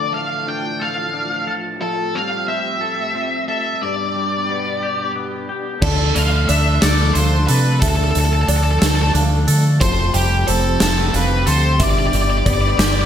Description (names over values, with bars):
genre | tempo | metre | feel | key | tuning
post-rock | 60 BPM (dotted quarters) | 6/8 | straight | D dorian | A4 = 440 Hz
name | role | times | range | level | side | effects
octave-fuzz lead guitar | melody | 0.0-13.1 s | G4 to G5 | -21 LUFS | left 1 dB | distortion, slapback echo
dark chamber string section | sustained chords | 0.0-13.1 s | A2 to A4 | -28 LUFS | right 1 dB | none
twangy electric guitar | arpeggios | 0.0-13.1 s | G2 to A4 | -25 LUFS | left 2 dB | wide subtle chorus, slapback echo
felt-muted upright piano | arpeggios | 5.8-13.1 s | C5 to F5 | -30 LUFS | right 2 dB | slapback echo
fingered electric bass | bass | 5.8-13.1 s | F1 to D3 | -17 LUFS | equal | none
big rock drum kit | drums | 5.8-12.9 s | crash cymbal, hi-hat, kick drum, snare drum | -20 LUFS | right 1 dB | none
room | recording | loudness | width
light reverb, small room ambience | none | -15 LUFS | side -9 dB against mid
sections
0.0-5.8 A section; 5.8-13.1 B section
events
none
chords
0.0 Dm; 1.8 Fadd9; 3.8 G; 5.8 Dm; 9.8 Fadd9; 11.8 G